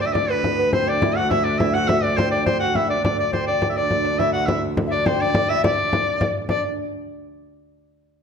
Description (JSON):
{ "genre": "medieval dance", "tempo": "139 BPM (dotted quarters)", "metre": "6/8", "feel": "straight", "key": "D mixolydian", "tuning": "A4 = 440 Hz", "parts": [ { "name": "edgy shawm", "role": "melody", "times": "0.0-6.6 s", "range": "B4 to F#5", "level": "-23 LUFS", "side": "equal", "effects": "slapback echo" }, { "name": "lute", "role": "second line", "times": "0.0-6.6 s", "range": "B3 to F#4", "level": "-26 LUFS", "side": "right 4 dB", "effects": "none" }, { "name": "tenor recorder", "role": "second line", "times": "0.0-6.6 s", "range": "B4 to F#5", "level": "-25 LUFS", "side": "left 5 dB", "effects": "none" }, { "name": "warm viola da gamba", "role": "drone", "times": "0.0-6.5 s", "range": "D2", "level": "-28 LUFS", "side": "right 1 dB", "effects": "none" }, { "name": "frame drum", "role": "percussion", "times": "0.2-6.6 s", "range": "none", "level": "-24 LUFS", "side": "left 1 dB", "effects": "none" } ], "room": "wet recital hall reverb, RT60 1.4 s", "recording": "close, detailed microphones", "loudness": "-18 LUFS", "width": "side -6 dB against mid", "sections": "0.0-6.5 A section", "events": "none", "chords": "none" }